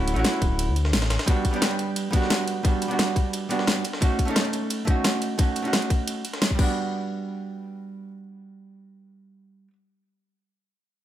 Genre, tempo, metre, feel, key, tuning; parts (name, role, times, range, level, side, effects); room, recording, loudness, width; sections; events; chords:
liquid drum and bass; 175 BPM; 4/4; straight; A4 = 440 Hz
archtop guitar, miked and amplified; accompaniment; 0.0-9.8 s; G3 to A4; -27 LUFS; right 2 dB; tape echo
smooth synth bass; bass; 0.0-1.2 s; D1 to D2; -24 LUFS; left 1 dB
jungle sampler-style drum kit; drums; 0.1-6.5 s; ride cymbal, snare drum; -31 LUFS; equal; high-pass filter on cymbals, high-pass filter on snare, high-pass filter on room
pop drum kit; drums; 0.1-6.7 s; crash cymbal, hi-hat, snare drum; -26 LUFS; equal
electronic kick drum; drums; 0.4-6.7 s; -22 LUFS; left 1 dB
light reverb; -22 LUFS; side -12 dB against mid
0.0-6.8 A section; 6.8-9.5 B section
0.0 Dmaj7; 1.3 Gmaj7; 3.8 F#m6/A; 6.6 Gmaj7